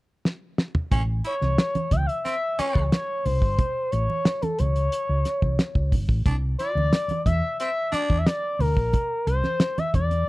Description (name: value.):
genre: funk.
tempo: 90 BPM.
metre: 4/4.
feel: straight.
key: A mixolydian.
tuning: A4 = 439 Hz.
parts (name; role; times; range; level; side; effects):
cloth-damped thuddy drum kit; drums; 0.3-10.3 s; hi-hat, kick drum, snare drum, toms; -22 LUFS; equal; none.
raspy baritone saxophone; second line; 0.9-8.2 s; C4 to E4; -31 LUFS; right 2 dB; none.
hollow-body short-scale fingered electric bass; bass; 0.9-10.2 s; G1 to E2; -24 LUFS; equal; none.
congas; percussion; 0.9-10.3 s; none; -32 LUFS; right 4 dB; none.
expressive portamento lead; melody; 1.3-10.3 s; A4 to G5; -26 LUFS; left 2 dB; chorus.
room: small room reverb.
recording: dry, close 1970s-style studio recording.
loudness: -21 LUFS.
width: side -20 dB against mid.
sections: 0.9-10.3 A section.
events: drum fill 0.2-0.9.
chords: 0.0 N.C.; 0.9 A7; 6.3 Cadd9.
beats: 0.24 | 0.91 1.58 2.25 2.91 | 3.58 4.25 4.92 5.59 | 6.26 6.92 7.59 8.26 | 8.93 9.60 10.28.